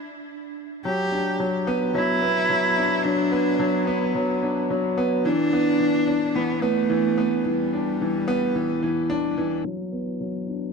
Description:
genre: electronica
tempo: 109 BPM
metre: 4/4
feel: straight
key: G major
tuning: A4 = 440 Hz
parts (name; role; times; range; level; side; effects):
- dark cello; melody; 0.0-9.4 s; G3 to G4; -24 LUFS; equal; none
- warm grand piano; riff; 0.8-10.7 s; E3 to D4; -23 LUFS; equal; low-pass filter, ping-pong delay
room: moderate huge ambient reverb, RT60 6.8 s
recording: low-pass filter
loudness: -20 LUFS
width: side -4 dB against mid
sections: 0.0-9.7 A section; 9.7-10.7 B section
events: filter sweep on grand piano 9.7-10.7; filter sweep 9.7-10.7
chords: 0.0 N.C.; 0.8 Gmaj7 (rootless); 5.2 Em7; 9.7 F#sus4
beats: 0.30 | 0.85 1.40 1.95 2.50 | 3.05 3.60 4.15 4.70 | 5.25 5.80 6.35 6.90 | 7.45 8.00 8.55 9.10 | 9.65 10.21

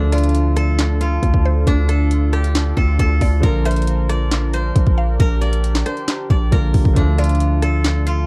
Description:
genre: hip hop, trap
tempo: 136 BPM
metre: 4/4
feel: half-time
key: D minor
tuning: A4 = 435 Hz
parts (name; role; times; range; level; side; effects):
- steel-string zither; melody; 0.0-8.3 s; D4 to D5; -27 LUFS; equal; digital delay
- clear concert grand piano; accompaniment; 0.0-8.3 s; D3 to Bb4; -29 LUFS; equal; none
- warm analog pad; sustained chords; 0.0-8.3 s; D3 to Bb4; -30 LUFS; equal; chorus
- hard-hitting 808-style bass; bass; 0.0-8.2 s; Bb1 to D2; -19 LUFS; equal; none
- mallet-like synth pluck; second line; 0.1-7.8 s; C5 to F5; -33 LUFS; equal; chorus, digital delay
- trap drum kit; drums; 0.1-8.2 s; handclaps, hi-hat, kick drum, rim click, snare drum; -20 LUFS; equal; none
room: little or no reverb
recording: dark, warm production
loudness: -17 LUFS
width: mono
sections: 0.0-8.3 A section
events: none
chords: 0.0 Dm; 3.4 Bb; 7.0 Dm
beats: 0.34 0.79 1.23 | 1.67 2.11 2.55 2.99 | 3.43 3.87 4.32 4.76 | 5.20 5.64 6.08 6.52 | 6.96 7.40 7.84

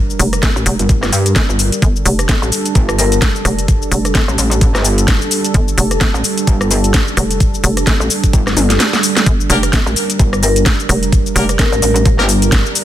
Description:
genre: bass house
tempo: 129 BPM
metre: 4/4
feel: swing 58% on 16ths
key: G minor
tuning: A4 = 440 Hz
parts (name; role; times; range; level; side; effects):
- dark analog pad; sustained chords; 0.0-12.8 s; G3 to Bb4; -21 LUFS; right 3 dB; chorus, sidechain pumping
- hollow knocking FM bass; bass; 0.0-11.7 s; F1 to G1; -16 LUFS; equal; tube saturation, sidechain pumping
- garage drum kit; drums; 0.1-12.8 s; cabasa, hi-hat, rim click, snare drum, toms; -16 LUFS; left 1 dB; studio reverb
- electronic kick drum; drums; 0.4-12.6 s; none; -13 LUFS; equal; studio reverb
- pulsing pluck wobble bass; bass; 0.6-12.6 s; G1 to G2; -15 LUFS; equal; chorus, overdrive, sidechain pumping
- vibraphone with medium hard mallets; melody; 3.0-3.1, 10.4-12.1 s; Bb4; -21 LUFS; left 7 dB; digital delay
- bright horn section; stabs; 9.5-12.2 s; Bb3 to Bb4; -21 LUFS; left 3 dB; sidechain pumping, digital delay
room: little or no reverb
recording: dense, heavily limited modern master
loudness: -11 LUFS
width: side -12 dB against mid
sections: 0.0-12.8 A section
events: drum fill 8.6-9.3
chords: 0.0 Gm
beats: 0.43 0.89 1.36 | 1.82 2.29 2.75 3.22 | 3.68 4.15 4.61 5.08 | 5.54 6.01 6.47 6.94 | 7.40 7.87 8.33 8.80 | 9.27 9.73 10.20 10.66 | 11.12 11.59 12.05 12.52

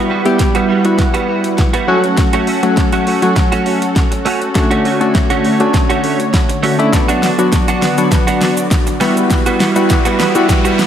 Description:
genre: dance-pop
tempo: 101 BPM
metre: 4/4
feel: straight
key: unclear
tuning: A4 = 439 Hz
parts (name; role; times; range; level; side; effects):
- warm analog keys; accompaniment; 0.0-10.9 s; F#3 to G4; -15 LUFS; left 1 dB; chorus, sidechain pumping
- soft supersaw; sustained chords; 0.0-10.9 s; D3 to F#5; -19 LUFS; equal; analog chorus, sidechain pumping
- direct-recorded clean electric guitar; riff; 0.0-10.9 s; G3 to F#4; -19 LUFS; right 5 dB; ensemble chorus
- downlifter and riser; sound effects; 0.1-2.2, 8.8-10.9 s; none; -30 LUFS; left 2 dB; none
- pop drum kit; drums; 0.3-10.9 s; hi-hat, kick drum, shaker, snare drum; -15 LUFS; equal; none
room: moderate plate reverb, RT60 1.6 s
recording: dreamy mix soaked in reverb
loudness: -11 LUFS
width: side -9 dB against mid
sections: 0.0-10.9 A section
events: build-up 0.0-10.9; drum fill 0.0-10.9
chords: 0.0 Emadd9; 1.9 F#m; 4.6 Dmaj7; 6.9 Bm; 9.0 Emadd9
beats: 0.40 0.99 1.58 | 2.18 2.77 3.37 3.96 | 4.55 5.15 5.74 6.34 | 6.93 7.52 8.12 8.71 | 9.31 9.90 10.49

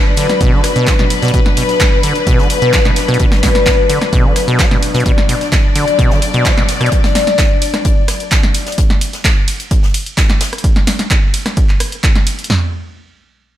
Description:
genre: acid house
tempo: 129 BPM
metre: 4/4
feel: straight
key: B minor pentatonic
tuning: A4 = 441 Hz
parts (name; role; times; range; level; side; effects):
- dark studio string section; sustained chords; 0.0-8.8 s; F#3 to D5; -16 LUFS; left 4 dB; sidechain pumping
- acid bass, saw; riff; 0.2-6.9 s; B2 to F#3; -17 LUFS; equal; vintage 12-bit sampler grit, analog delay
- punchy analog drum machine; drums; 0.2-12.5 s; handclaps, hi-hat, ride cymbal, rim click, snare drum; -18 LUFS; right 1 dB; none
- tight funk drum kit; drums; 0.2-10.5 s; hi-hat, snare drum; -28 LUFS; left 2 dB; none
- punchy analog drum machine; drums; 0.4-12.6 s; kick drum, snare drum, toms; -13 LUFS; equal; none
room: light reverb, small room ambience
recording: none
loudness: -10 LUFS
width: side -12 dB against mid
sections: 0.0-12.5 A section; 12.5-13.6 B section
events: drop 0.0-12.5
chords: 0.0 Bm; 12.5 N.C.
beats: 0.41 0.87 | 1.34 1.80 2.27 2.73 | 3.20 3.66 4.13 4.59 | 5.06 5.52 5.99 6.45 | 6.92 7.38 7.85 8.31 | 8.78 9.24 9.71 10.18 | 10.64 11.11 11.57 12.04 | 12.50

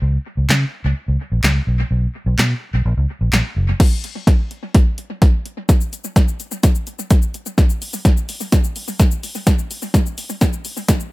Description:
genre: dance-pop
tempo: 127 BPM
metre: 4/4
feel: straight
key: unclear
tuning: A4 = 437 Hz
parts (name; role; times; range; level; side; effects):
- vintage muted fingered electric bass; bass; 0.0-3.7 s; Gb1 to Db3; -16 LUFS; equal; sidechain pumping
- punchy analog drum machine; drums; 0.5-11.1 s; crash cymbal, handclaps, hi-hat, kick drum, shaker, snare drum; -15 LUFS; equal; analog delay
room: little or no reverb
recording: echo-heavy mix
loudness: -15 LUFS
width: side -20 dB against mid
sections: 0.0-3.8 A section; 3.8-11.1 B section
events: build-up 3.8-11.1; drum fill 3.8-11.1; filter sweep 3.8-11.1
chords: none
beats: | 0.02 0.49 0.96 1.44 | 1.91 2.38 2.85 3.33 | 3.80 4.27 4.74 5.22 | 5.69 6.16 6.63 7.11 | 7.58 8.05 8.52 9.00 | 9.47 9.94 10.41 10.89

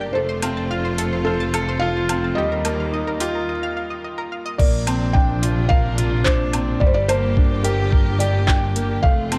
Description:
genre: piano and strings electronica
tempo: 108 BPM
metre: 4/4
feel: straight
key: Bb major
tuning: A4 = 439 Hz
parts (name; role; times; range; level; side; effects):
- felt-muted upright piano; melody; 0.0-9.4 s; A4 to G5; -28 LUFS; equal; tape echo
- rich studio string section; sustained chords; 0.0-9.4 s; C3 to G4; -33 LUFS; equal; sidechain pumping
- analog pluck; arpeggios; 0.0-4.5 s; G4 to A5; -33 LUFS; equal; chorus, sidechain pumping, tape echo
- clear baby grand piano; riff; 0.0-9.4 s; G3 to C5; -27 LUFS; equal; tape echo
- clear studio double bass section; bass; 0.0-9.4 s; F1 to Eb2; -26 LUFS; equal; sidechain pumping
- deep house drum kit; drums; 0.4-9.4 s; crash cymbal, handclaps, hi-hat, woodblock; -29 LUFS; equal; overdrive
- electronic kick drum; drums; 4.6-9.1 s; none; -19 LUFS; equal; none
room: light reverb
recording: none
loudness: -20 LUFS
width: mono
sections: 0.0-4.6 A section; 4.6-9.4 B section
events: build-up 0.0-4.6; break 3.5-4.6; drop 4.6-9.4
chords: 0.1 F; 2.4 Ebadd9; 4.6 Bbadd9; 6.8 Gm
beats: | 0.15 0.70 1.26 1.82 | 2.37 2.93 3.48 4.04 | 4.59 5.15 5.71 6.26 | 6.82 7.37 7.93 8.48 | 9.04

